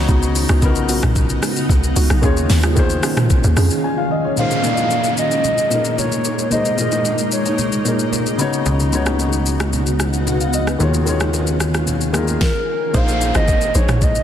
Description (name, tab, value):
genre	amapiano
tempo	112 BPM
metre	4/4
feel	straight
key	Bb phrygian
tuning	A4 = 440 Hz
part	dark baby grand piano	accompaniment	0.0-14.2 s	Bb2 to Ab5	-22 LUFS	left 4 dB	none
part	granular cloud pad	sustained chords	0.0-14.2 s	Db3 to Ab4	-23 LUFS	right 1 dB	built-in reverb, sidechain pumping
part	hollow log drum bass	bass	0.0-3.7, 12.9-14.2 s	Ab1 to F2	-17 LUFS	equal	none
part	soft round pluck	stabs	0.1-3.7, 12.9-13.9 s	Cb4 to C5	-26 LUFS	right 4 dB	chorus, digital delay
part	smooth R&B drum kit	drums	0.1-14.2 s	hi-hat, kick drum, rim click, shaker, snare drum, toms	-20 LUFS	equal	none
part	congas and bongos	percussion	0.1-14.1 s	none	-29 LUFS	right 4 dB	none
part	hollow clarinet-like synth lead	melody	4.4-8.4, 12.4-14.2 s	Bb4 to F5	-20 LUFS	equal	chorus, digital delay
part	downlifter	sound effects	4.4-8.7, 12.9-14.2 s	none	-28 LUFS	right 1 dB	none
part	plucky analog bass	bass	8.7-12.4 s	Db2 to Eb2	-19 LUFS	equal	none
room	light reverb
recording	dense, heavily limited modern master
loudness	-15 LUFS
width	side -10 dB against mid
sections	0.0-4.4 A section; 4.4-12.9 B section; 12.9-14.2 C section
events	drop 0.0-4.4; break 3.8-4.4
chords	0.0 Db9sus4; 2.2 Eb9sus4; 4.4 Bb9sus4; 8.4 Db9sus4; 10.8 Eb9sus4; 12.9 Bb9sus4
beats	| 0.09 0.62 1.16 1.70 | 2.23 2.77 3.30 3.84 | 4.37 4.91 5.45 5.98 | 6.52 7.05 7.59 8.12 | 8.66 9.20 9.73 10.27 | 10.80 11.34 11.87 12.41 | 12.95 13.48 14.02